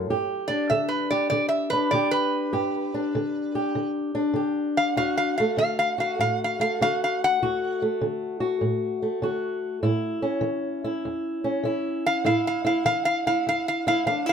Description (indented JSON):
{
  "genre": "acoustic country blues, solo or duo",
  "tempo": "99 BPM",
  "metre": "4/4",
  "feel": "swing 65% on 8ths",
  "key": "unclear",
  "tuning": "A4 = 441 Hz",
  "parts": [
    { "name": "fingerpicked old ladder-braced acoustic guitar", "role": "accompaniment", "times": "0.0-14.3 s", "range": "D2 to G4", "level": "-25 LUFS", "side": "equal", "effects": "none" },
    { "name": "lap resonator guitar", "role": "melody", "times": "0.5-7.8, 12.1-14.3 s", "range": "B4 to F#5", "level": "-23 LUFS", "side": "equal", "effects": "none" }
  ],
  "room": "moderate studio reverb, RT60 0.7 s",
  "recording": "none",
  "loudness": "-22 LUFS",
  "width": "side -7 dB against mid",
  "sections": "0.0-14.3 A section",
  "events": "resonator guitar played with a steel bar solo 0.0-14.3",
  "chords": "0.1 G; 5.0 D; 9.8 A"
}